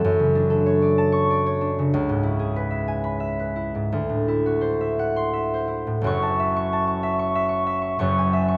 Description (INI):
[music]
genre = classical, solo harp piece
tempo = 83-99 BPM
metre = 3/4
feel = rubato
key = unclear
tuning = A4 = 440 Hz
[part]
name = concert harp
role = solo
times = 0.0-8.6 s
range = F#1 to C#6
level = -22 LUFS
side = equal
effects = none
[sound]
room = light reverb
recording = close, detailed microphones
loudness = -23 LUFS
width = mono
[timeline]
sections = 0.0-6.0 A section; 6.0-8.6 B section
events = none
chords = 0.0 Dmaj7/F#; 1.9 C#m7; 3.9 D9; 6.0 F#m7; 8.0 E6/F#